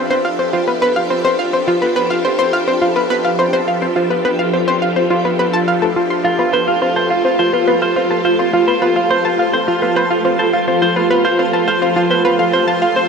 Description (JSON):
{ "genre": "ambient, sequencer-driven space music", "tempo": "105 BPM", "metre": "4/4", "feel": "straight", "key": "F major", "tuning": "A4 = 441 Hz", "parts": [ { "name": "phased string machine", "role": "sustained chords", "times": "0.0-13.1 s", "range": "F3 to E5", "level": "-18 LUFS", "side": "left 1 dB", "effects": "ensemble chorus, phaser" }, { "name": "analog pluck", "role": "riff", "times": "0.0-13.1 s", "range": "F4 to C6", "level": "-16 LUFS", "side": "equal", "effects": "chorus, analog delay" }, { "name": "twinkling granular texture", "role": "texture", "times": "0.0-13.1 s", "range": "A3 to A4", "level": "-26 LUFS", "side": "equal", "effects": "built-in reverb" }, { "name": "semi-hollow electric guitar", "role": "arpeggios", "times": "6.2-13.1 s", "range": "F4 to C5", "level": "-17 LUFS", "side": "right 2 dB", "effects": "auto-pan, analog delay" } ], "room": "wet shimmer reverb, RT60 7.3 s", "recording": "none", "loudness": "-13 LUFS", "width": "side -5 dB against mid", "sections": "0.0-13.1 A section", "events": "none", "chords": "0.0 Fadd9", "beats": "0.53 1.11 | 1.68 2.25 2.82 3.39 | 3.96 4.53 5.11 5.68 | 6.25 6.82 7.39 7.96 | 8.53 9.11 9.68 10.25 | 10.82 11.39 11.96 12.53" }